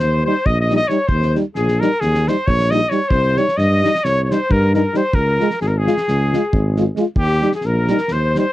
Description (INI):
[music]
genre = balkan folk, Balkan brass band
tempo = 267 BPM (eighths)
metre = 9/8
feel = straight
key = Eb mixolydian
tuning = A4 = 441 Hz
[part]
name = clear cornet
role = melody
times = 0.0-8.5 s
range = G4 to Eb5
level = -20 LUFS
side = equal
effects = none
[part]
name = clear clarinet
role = second line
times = 0.0-8.5 s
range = G4 to Eb5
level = -25 LUFS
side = left 7 dB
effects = none
[part]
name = mellow tuba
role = bass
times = 0.0-8.4 s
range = Ab1 to G2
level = -18 LUFS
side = equal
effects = none
[part]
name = warm euphonium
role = accompaniment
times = 0.3-8.4 s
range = Eb4 to F4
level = -21 LUFS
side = left 6 dB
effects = none
[part]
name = warm euphonium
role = accompaniment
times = 0.3-8.4 s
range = G3 to Ab3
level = -21 LUFS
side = right 6 dB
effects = none
[part]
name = loose indie drum kit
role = percussion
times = 0.5-8.4 s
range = kick drum, snare drum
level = -23 LUFS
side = equal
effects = none
[sound]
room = little or no reverb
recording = dry, close 1970s-style studio recording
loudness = -14 LUFS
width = side -15 dB against mid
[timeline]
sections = 0.0-8.5 A section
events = none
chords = 0.0 Eb; 3.1 Cm; 5.1 Db; 7.2 Eb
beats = 0.19 0.42 0.64 0.86 | 1.09 1.31 1.54 1.76 1.99 2.21 2.44 2.66 2.89 | 3.11 3.34 3.56 3.79 4.01 4.24 4.46 4.69 4.91 | 5.14 5.36 5.59 5.81 6.04 6.26 6.49 6.71 6.94 | 7.17 7.39 7.62 7.84 8.07 8.29 8.52